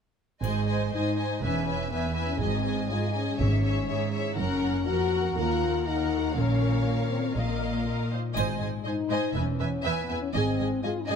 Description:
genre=cinematic, heroic adventure film score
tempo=121 BPM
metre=4/4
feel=straight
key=Ab mixolydian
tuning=A4 = 441 Hz
part: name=warm symphonic violin section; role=melody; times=0.4-11.2 s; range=Fb5 to Ab5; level=-36 LUFS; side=left 2 dB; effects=none
part: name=warm symphonic violin section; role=second line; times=0.4-11.2 s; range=Bb4 to E5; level=-36 LUFS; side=left 1 dB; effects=none
part: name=warm symphonic viola section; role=accompaniment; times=0.4-11.2 s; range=Ab4 to C5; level=-35 LUFS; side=right 2 dB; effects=none
part: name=mellow French horn section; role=sustained chords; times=0.4-11.2 s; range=Ab3 to Gb4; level=-30 LUFS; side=left 5 dB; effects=none
part: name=concert harp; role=arpeggios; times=0.4-11.2 s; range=E2 to Bb4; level=-35 LUFS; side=left 9 dB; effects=none
part: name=rich symphonic cello section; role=bass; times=0.4-11.2 s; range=Eb2 to Bb2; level=-31 LUFS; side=right 4 dB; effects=none
part: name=rich symphonic double bass section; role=bass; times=0.4-10.6 s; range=E1 to Eb2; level=-32 LUFS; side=right 4 dB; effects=none
part: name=triangle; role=percussion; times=0.4-1.4, 8.4-9.3 s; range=none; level=-52 LUFS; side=right 1 dB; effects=none
part: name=timpani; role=percussion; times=3.4-4.1 s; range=Ab2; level=-33 LUFS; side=equal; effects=none
room=light reverb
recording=close, detailed microphones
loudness=-25 LUFS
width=side -6 dB against mid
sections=0.4-11.2 A section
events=none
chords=0.4 Ab; 1.4 E; 2.4 Ab; 3.4 Dbm/Ab; 4.4 Gb; 5.4 Ebm; 6.4 Bbm; 7.4 Ebsus2/Bb; 8.4 Ab; 9.4 E; 10.3 Ab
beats=| 0.44 0.94 1.44 1.93 | 2.42 2.92 3.41 3.90 | 4.39 4.88 5.38 5.88 | 6.37 6.87 7.37 7.87 | 8.37 8.86 9.36 9.85 | 10.35 10.84

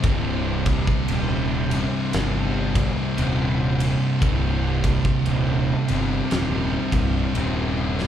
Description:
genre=stoner and doom metal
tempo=58 BPM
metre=4/4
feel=swing 60% on 8ths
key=C minor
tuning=A4 = 441 Hz
part: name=thick fuzz guitar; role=riff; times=0.0-8.1 s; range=C2 to C3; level=-25 LUFS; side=left 3 dB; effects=distortion
part: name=thick fuzz guitar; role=riff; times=0.0-8.1 s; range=C2 to C3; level=-26 LUFS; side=right 5 dB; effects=distortion
part: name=fuzz fingered electric bass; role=bass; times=0.0-8.1 s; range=C1 to G1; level=-26 LUFS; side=equal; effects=overdrive
part: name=big rock drum kit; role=drums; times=0.0-8.1 s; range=kick drum, ride cymbal, snare drum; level=-26 LUFS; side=equal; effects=none
room=light reverb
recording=band playing live in one room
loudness=-20 LUFS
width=side -10 dB against mid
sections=0.0-8.1 A section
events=drum fill 7.9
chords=0.0 Cm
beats=| 0.04 1.08 2.13 3.17 | 4.22 5.26 6.30 7.35

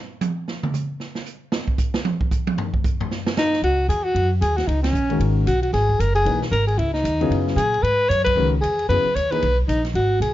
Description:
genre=modal jazz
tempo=228 BPM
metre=4/4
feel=swing 59% on 8ths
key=C# dorian from 3.6 s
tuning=A4 = 441 Hz
part: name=swinging big-band drum kit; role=drums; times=0.2-10.3 s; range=hi-hat, kick drum, ride cymbal, snare drum, toms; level=-26 LUFS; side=right 2 dB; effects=none
part: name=breathy alto saxophone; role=melody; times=3.4-10.3 s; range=C#4 to C#5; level=-20 LUFS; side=equal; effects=plate reverb
part: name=upright bass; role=bass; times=3.6-10.3 s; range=F#1 to A#2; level=-22 LUFS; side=equal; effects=none
part: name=warm grand piano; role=accompaniment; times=5.1-9.4 s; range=C#3 to B4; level=-24 LUFS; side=left 4 dB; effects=none
room=light reverb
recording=dark, warm production, nothing above 7.5 kHz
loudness=-18 LUFS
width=side -14 dB against mid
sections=0.0-3.6 A section; 3.6-10.3 B section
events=drum solo 0.0-3.6; band accent 4.8, 8.2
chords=0.0 N.C.; 3.6 C#9sus4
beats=0.21 | 0.47 0.73 1.00 1.26 | 1.52 1.78 2.05 2.31 | 2.57 2.84 3.10 3.36 | 3.62 3.89 4.15 4.42 | 4.68 4.94 5.21 5.47 | 5.73 6.00 6.26 6.52 | 6.79 7.05 7.31 7.58 | 7.84 8.11 8.37 8.63 | 8.89 9.16 9.42 9.69 | 9.95 10.21

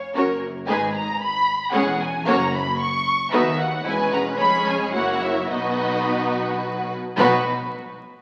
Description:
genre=quick classical-period movement for string orchestra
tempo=106-114 BPM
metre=3/4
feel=straight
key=B major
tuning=A4 = 440 Hz
part: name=warm studio violin section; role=melody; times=0.0-7.5 s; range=C#5 to C#6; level=-26 LUFS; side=equal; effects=none
part: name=warm symphonic violin section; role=second line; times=0.2-7.5 s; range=E4 to C#5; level=-26 LUFS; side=equal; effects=none
part: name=warm symphonic viola section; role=accompaniment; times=0.2-7.5 s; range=G#3 to F#4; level=-28 LUFS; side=equal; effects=none
part: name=rich studio double bass section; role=bass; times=0.2-7.5 s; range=E1 to D#2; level=-36 LUFS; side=equal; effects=none
part: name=warm symphonic cello section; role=bass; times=0.2-7.5 s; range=D#2 to B2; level=-35 LUFS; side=equal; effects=none
room=wet recital hall reverb, RT60 1.7 s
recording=very old 78 rpm record, vinyl crackle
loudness=-22 LUFS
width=mono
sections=0.0-7.2 A section; 7.2-8.2 B section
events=none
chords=0.2 F#; 0.7 G#m; 1.7 C#m/E; 2.3 F#; 3.3 B/D#; 3.9 C#m7/E; 4.4 C#7/E#; 4.9 F#7; 5.5 B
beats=0.16 | 0.69 1.21 1.74 | 2.27 2.80 3.33 | 3.86 4.40 4.94 | 5.50 6.06 6.62 | 7.19

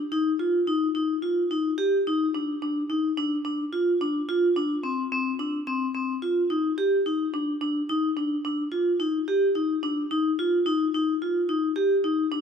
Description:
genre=progressive instrumental, progressive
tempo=216 BPM (eighths)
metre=9/8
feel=straight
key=unclear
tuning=A4 = 442 Hz
part: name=vibraphone with hard mallets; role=solo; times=0.1-12.4 s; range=C4 to G4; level=-23 LUFS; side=left 1 dB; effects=none
room=moderate plate reverb, RT60 3.1 s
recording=minimal, uncompressed stereo recording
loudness=-23 LUFS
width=side -7 dB against mid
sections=0.0-12.4 A section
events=none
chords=none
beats=| 0.11 0.39 0.67 0.95 1.23 1.50 1.78 2.06 2.34 | 2.62 2.89 3.17 3.45 3.73 4.00 4.28 4.56 4.84 | 5.11 5.39 5.67 5.95 6.22 6.50 6.78 7.06 7.33 | 7.61 7.89 8.17 8.44 8.72 9.00 9.28 9.55 9.83 | 10.11 10.38 10.66 10.94 11.22 11.49 11.77 12.05 12.32

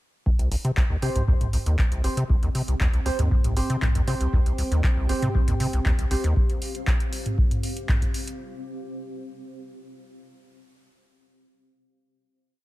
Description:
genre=acid house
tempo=118 BPM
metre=4/4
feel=straight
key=C minor pentatonic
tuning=A4 = 440 Hz
part: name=acid bass, square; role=riff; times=0.3-6.3 s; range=Bb1 to C3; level=-24 LUFS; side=equal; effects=overdrive, sidechain pumping
part: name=electronic kick drum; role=drums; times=0.3-8.1 s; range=none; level=-23 LUFS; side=equal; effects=none
part: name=granular cloud pad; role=texture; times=2.0-8.4 s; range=C4 to G5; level=-36 LUFS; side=left 1 dB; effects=built-in reverb, sidechain pumping
part: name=booming analog drum machine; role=drums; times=0.4-8.4 s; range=handclaps, hi-hat, toms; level=-31 LUFS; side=equal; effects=none
part: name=percussive organ stab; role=stabs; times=1.0-6.2 s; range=C4 to C5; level=-33 LUFS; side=right 2 dB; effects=lush chorus, ping-pong delay
part: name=dark analog pad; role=sustained chords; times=4.7-6.3 s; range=C4 to G5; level=-36 LUFS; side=right 3 dB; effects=chorus, sidechain pumping
room=digital ambience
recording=none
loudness=-21 LUFS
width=side -17 dB against mid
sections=0.3-8.4 groove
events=fade-in on ambient pad 0.3-8.4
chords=0.3 C5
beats=| 0.26 0.77 1.28 1.79 | 2.30 2.80 3.31 3.82 | 4.33 4.84 5.35 5.86 | 6.36 6.87 7.38 7.89

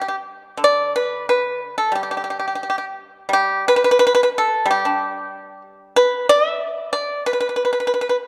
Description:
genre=chinese traditional, Chinese solo plucked strings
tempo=85-95 BPM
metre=2/4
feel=rubato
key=G gong mode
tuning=A4 = 436 Hz
part: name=pipa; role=solo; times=0.0-8.2 s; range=D3 to E5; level=-19 LUFS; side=equal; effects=none
room=moderate concert hall reverb, RT60 2.1 s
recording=dark, warm production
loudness=-19 LUFS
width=mono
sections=0.0-3.3 A section; 3.3-8.3 B section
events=none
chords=none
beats=| 0.59 1.25 | 1.93 2.61 | 3.30 3.99 | 4.67 5.31 | 5.95 6.59 | 7.24 7.92

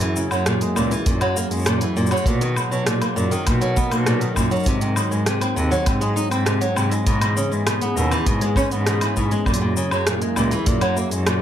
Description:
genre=folktronica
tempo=100 BPM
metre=4/4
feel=straight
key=unclear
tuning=A4 = 437 Hz
part: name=warm analog pad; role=sustained chords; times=0.0-11.4 s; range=E3 to A#4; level=-28 LUFS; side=equal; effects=chorus
part: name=flamenco guitar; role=arpeggios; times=0.0-11.4 s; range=A#2 to D#4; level=-22 LUFS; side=right 1 dB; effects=tape echo
part: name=rich cello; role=bass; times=0.0-11.4 s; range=C#2 to B2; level=-23 LUFS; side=equal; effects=none
part: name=organic electronic drum kit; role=drums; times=0.0-11.4 s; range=hi-hat, rim click, shaker, woodblock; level=-25 LUFS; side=left 1 dB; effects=overdrive
part: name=kick drum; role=drums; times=1.1-10.8 s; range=none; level=-22 LUFS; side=equal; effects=none
room=light reverb, small room ambience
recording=none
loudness=-18 LUFS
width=side -10 dB against mid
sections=0.0-11.4 A section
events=none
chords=0.0 F#9; 2.3 Bmaj7; 4.7 G#7; 7.1 C#m7; 9.5 F#9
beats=0.47 1.06 1.67 | 2.27 2.87 3.46 4.07 | 4.67 5.26 5.87 6.46 | 7.07 7.67 8.27 8.87 | 9.46 10.06 10.66 11.27

